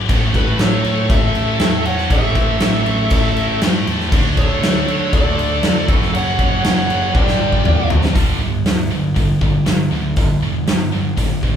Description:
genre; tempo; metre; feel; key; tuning
hard rock; 119 BPM; 4/4; straight; unclear; A4 = 440 Hz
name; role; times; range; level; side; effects
fuzz picked electric bass; bass; 0.0-11.6 s; E1 to D3; -23 LUFS; left 1 dB; overdrive
heavy high-gain guitar; riff; 0.1-11.6 s; F#2 to D4; -24 LUFS; left 8 dB; distortion
scooped high-gain guitar; riff; 0.1-11.6 s; F#2 to D4; -22 LUFS; right 7 dB; distortion
huge arena drum kit; drums; 0.1-11.5 s; crash cymbal, hi-hat, kick drum, snare drum, toms; -17 LUFS; equal; none
bluesy overdriven lead guitar; melody; 0.4-7.9 s; B4 to G5; -22 LUFS; equal; distortion
dark smooth lead guitar; second line; 0.4-7.9 s; F#4 to D5; -25 LUFS; right 2 dB; overdrive
room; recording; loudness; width
moderate large studio reverb, RT60 0.8 s; band playing live in one room; -14 LUFS; side -8 dB against mid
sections
0.0-8.1 A section; 8.1-11.6 B section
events
drum fill 7.1-8.1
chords
0.1 A5; 4.1 D5; 5.9 F#5; 7.1 G5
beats
| 0.09 0.59 1.10 1.60 | 2.10 2.61 3.11 3.62 | 4.12 4.62 5.13 5.63 | 6.13 6.64 7.14 7.64 | 8.15 8.65 9.16 9.66 | 10.17 10.67 11.18

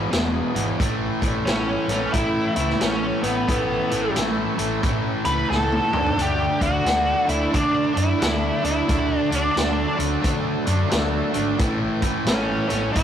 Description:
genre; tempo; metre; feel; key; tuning
blues rock power trio and southern rock; 89 BPM; 4/4; swing 63% on 8ths; unclear; A4 = 440 Hz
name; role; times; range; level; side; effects
overdriven tonewheel organ; sustained chords; 0.0-13.0 s; D3 to A4; -33 LUFS; right 2 dB; chorus vibrato, slow rotary speaker
crunchy overdriven guitar; riff; 0.0-13.0 s; E2 to D4; -23 LUFS; equal; none
hollow-body short-scale fingered electric bass; bass; 0.0-13.0 s; E1 to D3; -28 LUFS; equal; none
vintage drum kit; drums; 0.1-13.0 s; hi-hat, kick drum, snare drum, toms; -26 LUFS; equal; none
octave-fuzz lead guitar; melody; 1.5-13.0 s; B3 to B4; -24 LUFS; equal; distortion
room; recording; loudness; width
moderate stone room reverb, RT60 1.3 s; rough rehearsal-room recording, warm saturation; -19 LUFS; side -9 dB against mid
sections
0.0-13.0 A section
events
drum fill 5.5-6.2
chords
0.0 E; 0.8 A; 5.9 D; 11.6 A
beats
0.12 | 0.80 1.47 2.14 2.82 | 3.49 4.17 4.84 5.51 | 6.19 6.86 7.54 8.22 | 8.89 9.57 10.25 10.92 | 11.60 12.28 12.96

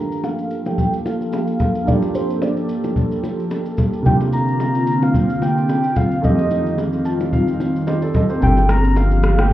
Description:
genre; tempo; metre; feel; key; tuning
amapiano; 110 BPM; 4/4; swing 55% on 16ths; G minor; A4 = 440 Hz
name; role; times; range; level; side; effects
soft octave-layered synth lead; melody; 0.0-9.5 s; C5 to Bb5; -24 LUFS; right 1 dB; chorus, low-pass filter, tape echo
warm grand piano; accompaniment; 0.0-9.5 s; F2 to A5; -24 LUFS; right 2 dB; low-pass filter
airy breathy pad; sustained chords; 0.0-9.5 s; D3 to A4; -20 LUFS; equal; chorus, low-pass filter
electronic shaker and rim click; drums; 0.1-9.5 s; none; -24 LUFS; equal; none
bongos and congas; percussion; 0.2-9.5 s; none; -21 LUFS; left 1 dB; none
sub bass with octave; bass; 8.4-9.5 s; G1; -15 LUFS; equal; none
room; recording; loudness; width
light reverb; heard muffled through a wall, club reverb, EQ; -16 LUFS; side -14 dB against mid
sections
0.0-9.5 A section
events
filter sweep 0.0-9.5; grand piano fill 6.8-8.4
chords
0.0 Gm9; 4.1 C9sus4; 6.2 F9; 8.4 Gm9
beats
0.24 0.78 1.33 | 1.87 2.42 2.96 3.51 | 4.05 4.60 5.14 5.69 | 6.24 6.78 7.33 7.87 | 8.42 8.96 9.51

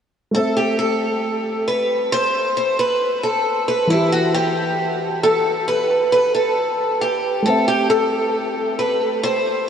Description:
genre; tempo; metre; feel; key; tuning
hip hop; 135 BPM; 4/4; half-time; unclear; A4 = 441 Hz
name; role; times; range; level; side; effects
picked acoustic archtop guitar; melody; 0.3-9.7 s; E4 to C5; -17 LUFS; equal; lush chorus, low-pass filter, analog delay
dark grand piano; accompaniment; 0.3-9.7 s; E3 to E5; -24 LUFS; equal; low-pass filter
room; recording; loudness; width
wet huge ambient reverb, RT60 7.6 s; dreamy mix soaked in reverb; -16 LUFS; side -8 dB against mid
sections
0.3-9.7 A section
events
none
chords
0.3 Am; 3.9 Em; 7.5 Am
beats
| 0.35 0.79 1.24 1.68 | 2.12 2.57 3.01 3.46 | 3.90 4.35 4.79 5.24 | 5.68 6.12 6.57 7.01 | 7.46 7.90 8.35 8.79 | 9.23 9.68

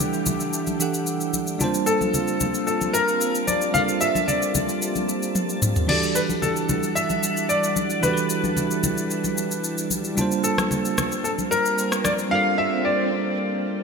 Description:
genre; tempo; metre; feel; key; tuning
amapiano; 112 BPM; 4/4; straight; unclear; A4 = 440 Hz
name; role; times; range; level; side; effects
clear grand piano; melody; 0.0-13.8 s; G4 to F5; -24 LUFS; left 1 dB; analog chorus, ping-pong delay
bell-like tine electric piano; accompaniment; 0.0-13.8 s; E3 to A5; -26 LUFS; right 4 dB; auto-pan
ensemble organ-string; sustained chords; 0.0-13.8 s; G3 to A5; -29 LUFS; left 1 dB; ensemble chorus
afro-pop drum kit; drums; 0.0-12.3 s; crash cymbal, rim click, shaker, toms; -27 LUFS; left 2 dB; none
congas; percussion; 0.0-12.2 s; none; -30 LUFS; left 4 dB; none
downlifter and swell; sound effects; 0.0-1.6, 12.0-13.4 s; none; -34 LUFS; right 2 dB; none
room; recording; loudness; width
wet lush hall reverb, RT60 2.5 s; bright 1980s-style digital production; -20 LUFS; side -5 dB against mid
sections
0.0-13.8 A section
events
drum fill 5.4-5.9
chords
0.0 Em11; 1.6 Gm11; 5.9 Em11; 10.2 Gm11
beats
0.00 0.53 1.07 | 1.60 2.14 2.67 3.21 | 3.75 4.28 4.82 5.35 | 5.89 6.42 6.96 7.50 | 8.03 8.57 9.10 9.64 | 10.18 10.71 11.25 11.78 | 12.32 12.85 13.39

